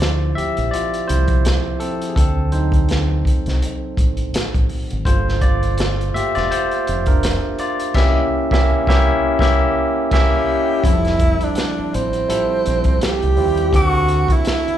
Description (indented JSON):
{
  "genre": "R&B, neo-soul",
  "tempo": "83 BPM",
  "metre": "4/4",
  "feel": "swing 56% on 16ths",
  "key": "F major",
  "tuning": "A4 = 440 Hz",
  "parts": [
    { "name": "barky tine electric piano", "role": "accompaniment", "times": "0.0-14.8 s", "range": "F3 to E5", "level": "-20 LUFS", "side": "moving between left 2 dB and right 5 dB", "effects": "overdrive, auto-pan, slapback echo" },
    { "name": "deep dub fingered electric bass", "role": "bass", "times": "0.0-14.7 s", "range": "E1 to Eb2", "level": "-19 LUFS", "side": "equal", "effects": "none" },
    { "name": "crunchy breakbeat drum kit", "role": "drums", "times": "0.0-14.8 s", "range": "crash cymbal, hi-hat, kick drum, snare drum", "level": "-20 LUFS", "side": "equal", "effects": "none" },
    { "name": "breathy tenor saxophone", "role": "melody", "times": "10.1-14.8 s", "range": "C4 to G4", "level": "-20 LUFS", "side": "right 2 dB", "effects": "slapback echo" }
  ],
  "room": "small room ambience",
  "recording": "live gig heard through the venue's PA, club reverb",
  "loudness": "-15 LUFS",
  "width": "side -11 dB against mid",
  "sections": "0.0-10.8 A section; 10.8-14.8 B section",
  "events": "tine electric piano solo 0.0-10.8; band accent 7.9-10.8",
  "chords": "0.0 Dm9; 2.2 D7b9; 5.1 Gm7; 7.9 C7b9; 10.8 Fmaj7; 13.7 D7b13",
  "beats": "0.72 1.44 | 2.16 2.88 3.61 4.33 | 5.05 5.78 6.50 7.22 | 7.95 8.67 9.39 10.11 | 10.84 11.56 12.28 13.01 | 13.73 14.45"
}